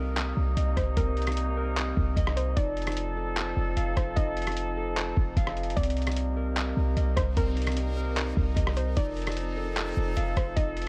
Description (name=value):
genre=hip hop, atmospheric cloud-rap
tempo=150 BPM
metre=4/4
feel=half-time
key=C dorian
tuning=A4 = 436 Hz
part: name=soft round pluck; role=melody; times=0.0-10.9 s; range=Bb4 to Eb5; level=-39 LUFS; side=equal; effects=chorus, low-pass filter, tape echo
part: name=mellow brass ensemble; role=sustained chords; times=0.0-10.9 s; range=C3 to A4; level=-37 LUFS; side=equal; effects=sidechain pumping
part: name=mellow electric guitar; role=arpeggios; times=0.0-10.9 s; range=C4 to F5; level=-39 LUFS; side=equal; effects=spring reverb, low-pass filter, tape echo
part: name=clean 808-style bass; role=bass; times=0.0-10.9 s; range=F1 to C2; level=-31 LUFS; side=equal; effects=none
part: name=lo-fi sampler-style drum kit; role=drums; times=0.2-10.9 s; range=handclaps, hi-hat, kick drum, rim click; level=-32 LUFS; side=equal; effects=none
part: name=backwards swelling texture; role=texture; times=6.8-10.9 s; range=C4 to F5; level=-46 LUFS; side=equal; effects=built-in reverb
room=little or no reverb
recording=none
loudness=-28 LUFS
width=mono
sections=0.0-10.9 A section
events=none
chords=0.0 Cm7; 2.6 F7; 5.8 Cm7; 9.0 F7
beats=0.17 0.57 | 0.97 1.37 1.77 2.17 | 2.57 2.97 3.37 3.77 | 4.17 4.57 4.97 5.37 | 5.77 6.17 6.57 6.97 | 7.37 7.77 8.17 8.57 | 8.97 9.37 9.77 10.17 | 10.57